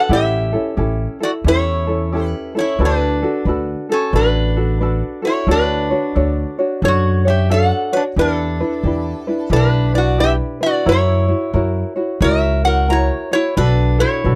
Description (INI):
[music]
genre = Hawaiian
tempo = 89 BPM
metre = 4/4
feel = swing 63% on 8ths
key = B minor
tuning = A4 = 440 Hz
[part]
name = metal-body resonator slide guitar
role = melody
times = 0.0-14.4 s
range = C#4 to A#5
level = -21 LUFS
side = equal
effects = none
[part]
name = tenor ukulele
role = accompaniment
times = 0.0-14.4 s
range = C#4 to C#5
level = -23 LUFS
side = equal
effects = none
[part]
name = upright bass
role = bass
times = 0.1-14.4 s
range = A1 to F#2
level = -20 LUFS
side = equal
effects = none
[sound]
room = little or no reverb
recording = dry, close 1970s-style studio recording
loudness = -17 LUFS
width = mono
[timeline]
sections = 0.0-14.4 A section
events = none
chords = 0.1 A7; 2.8 D6; 5.5 Bm9/D; 8.2 Em7; 10.9 F#7; 13.6 Bm7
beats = | 0.11 0.78 1.45 2.12 | 2.79 3.47 4.14 4.81 | 5.48 6.16 6.83 7.50 | 8.18 8.85 9.53 10.20 | 10.88 11.55 12.23 12.90 | 13.58 14.25